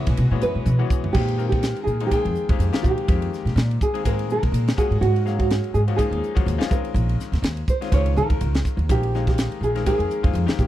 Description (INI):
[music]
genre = electric jazz fusion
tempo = 124 BPM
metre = 4/4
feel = swing 56% on 16ths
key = unclear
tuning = A4 = 440 Hz
[part]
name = bright concert grand piano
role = accompaniment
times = 0.0-10.7 s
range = Eb3 to G5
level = -29 LUFS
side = left 11 dB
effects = none
[part]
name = warm chamber string section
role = sustained chords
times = 0.0-1.1 s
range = Gb3 to Fb5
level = -39 LUFS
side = right 1 dB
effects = none
[part]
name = upright bass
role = bass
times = 0.0-10.7 s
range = Bb1 to Eb3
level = -22 LUFS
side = equal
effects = none
[part]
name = crisp fusion drum kit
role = drums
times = 0.1-10.7 s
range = crash cymbal, hi-hat, kick drum, ride cymbal, snare drum, toms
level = -23 LUFS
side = equal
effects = none
[part]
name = nylon-string guitar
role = melody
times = 0.4-10.7 s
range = Gb4 to Db5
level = -25 LUFS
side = right 2 dB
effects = slapback echo
[sound]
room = little or no reverb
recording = dry, close 1970s-style studio recording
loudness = -19 LUFS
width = side -13 dB against mid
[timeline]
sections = 0.0-1.1 A section; 1.1-10.7 B section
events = upright bass solo 0.0-1.1; drum fill 0.7-1.1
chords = 0.0 Gb9sus4; 1.1 Bb13sus4; 4.8 Ab13sus4; 6.7 Eb13sus4; 8.9 Bb13sus4